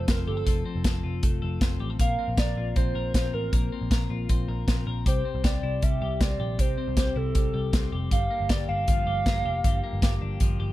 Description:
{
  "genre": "jangly indie pop",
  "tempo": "157 BPM",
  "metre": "4/4",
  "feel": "straight",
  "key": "C mixolydian",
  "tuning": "A4 = 440 Hz",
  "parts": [
    { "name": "warbly nostalgic lead", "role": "melody", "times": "0.0-10.7 s", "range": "A4 to F5", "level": "-31 LUFS", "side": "right 2 dB", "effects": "chorus, digital delay" },
    { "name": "twelve-string electric guitar", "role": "arpeggios", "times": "0.0-10.7 s", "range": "G2 to Bb4", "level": "-34 LUFS", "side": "left 6 dB", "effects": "none" },
    { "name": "vintage muted picked electric bass", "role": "bass", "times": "0.0-10.7 s", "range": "F1 to C2", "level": "-29 LUFS", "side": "equal", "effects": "none" },
    { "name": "modern studio drum kit", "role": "drums", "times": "0.1-10.5 s", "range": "hi-hat, kick drum, snare drum", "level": "-25 LUFS", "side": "equal", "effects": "none" }
  ],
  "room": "little or no reverb",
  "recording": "dark, warm production",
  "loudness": "-23 LUFS",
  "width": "side -15 dB against mid",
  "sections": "0.0-10.7 A section",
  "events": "none",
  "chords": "0.0 F; 2.0 Bbsus2; 5.1 C; 8.1 Gm7"
}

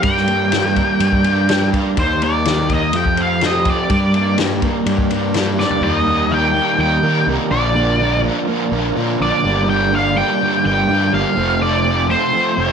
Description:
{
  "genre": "psychedelic rock",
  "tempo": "124 BPM",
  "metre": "4/4",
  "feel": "straight",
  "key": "G minor",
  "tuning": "A4 = 439 Hz",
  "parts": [
    { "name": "octave-fuzz lead guitar", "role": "melody", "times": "0.0-12.7 s", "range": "C5 to G5", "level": "-18 LUFS", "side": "left 1 dB", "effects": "wah, distortion, slapback echo" },
    { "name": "tonewheel organ", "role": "sustained chords", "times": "0.0-12.7 s", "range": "F3 to Bb4", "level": "-26 LUFS", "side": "right 12 dB", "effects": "chorus vibrato, fast rotary speaker" },
    { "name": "overdriven semi-hollow guitar", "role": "riff", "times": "0.0-12.7 s", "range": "F2 to G4", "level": "-19 LUFS", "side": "right 1 dB", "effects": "harmonic tremolo" },
    { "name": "fuzz fingered electric bass", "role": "bass", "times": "0.0-12.7 s", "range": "F1 to Eb3", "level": "-21 LUFS", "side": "equal", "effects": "overdrive" },
    { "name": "vintage drum kit", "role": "drums", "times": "0.0-5.8 s", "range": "kick drum, ride cymbal, snare drum, toms", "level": "-21 LUFS", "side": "left 3 dB", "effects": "none" }
  ],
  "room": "light reverb",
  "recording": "1960s-style stereo",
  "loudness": "-14 LUFS",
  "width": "side -7 dB against mid",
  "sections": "0.0-5.8 A section; 5.8-12.7 B section",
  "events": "drum fill 5.6",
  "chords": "0.0 Gm; 2.0 Eb; 2.9 Fadd9; 3.9 Gm; 5.8 Eb; 7.5 Bb; 9.4 Gm7; 11.4 F"
}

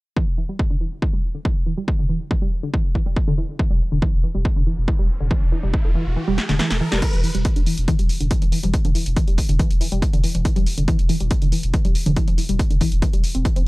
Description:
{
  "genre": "driving peak-time techno",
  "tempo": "140 BPM",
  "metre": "4/4",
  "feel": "straight",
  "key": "E minor",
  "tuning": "A4 = 440 Hz",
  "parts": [
    { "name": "tight sequenced synth", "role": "riff", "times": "0.2-13.6 s", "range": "D3 to C4", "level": "-26 LUFS", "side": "equal", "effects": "chorus, phaser, sidechain pumping, analog delay" },
    { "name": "electronic kick drum", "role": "drums", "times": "0.2-13.5 s", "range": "none", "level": "-20 LUFS", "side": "equal", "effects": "overdrive" },
    { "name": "riser", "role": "sound effects", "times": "5.1-7.0 s", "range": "none", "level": "-33 LUFS", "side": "right 1 dB", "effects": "none" },
    { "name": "saturated sub bass", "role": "bass", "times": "3.7-13.7 s", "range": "E1", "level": "-22 LUFS", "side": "equal", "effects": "overdrive, sidechain pumping, low-pass filter" },
    { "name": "techno drum kit", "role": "drums", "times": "6.4-13.6 s", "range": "crash cymbal, hi-hat, snare drum, toms", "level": "-27 LUFS", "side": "equal", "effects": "overdrive" }
  ],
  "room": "little or no reverb",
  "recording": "dry, gritty hardware recording",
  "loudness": "-18 LUFS",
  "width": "side -21 dB against mid",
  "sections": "0.2-7.0 A section; 7.0-13.7 B section",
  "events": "filter sweep on synth arpeggio sound 0.2-7.0, 7.0-13.7; riser 5.1-7.0; kick drops out 6.2-7.0; drum fill 6.4-7.0",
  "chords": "0.2 Em7; 7.0 E5"
}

